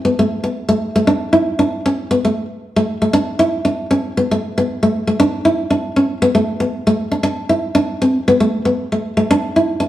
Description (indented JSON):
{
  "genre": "highlife",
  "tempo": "117 BPM",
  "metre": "4/4",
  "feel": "straight",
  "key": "unclear",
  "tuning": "A4 = 440 Hz",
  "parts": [
    { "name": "nylon-string guitar", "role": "solo", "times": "0.0-9.9 s", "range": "A3 to E4", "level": "-14 LUFS", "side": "equal", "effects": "none" }
  ],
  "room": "wet large studio reverb, RT60 1.3 s",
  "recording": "band playing live in one room",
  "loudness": "-14 LUFS",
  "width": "side -13 dB against mid",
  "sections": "0.0-9.9 A section",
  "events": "none",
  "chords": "none"
}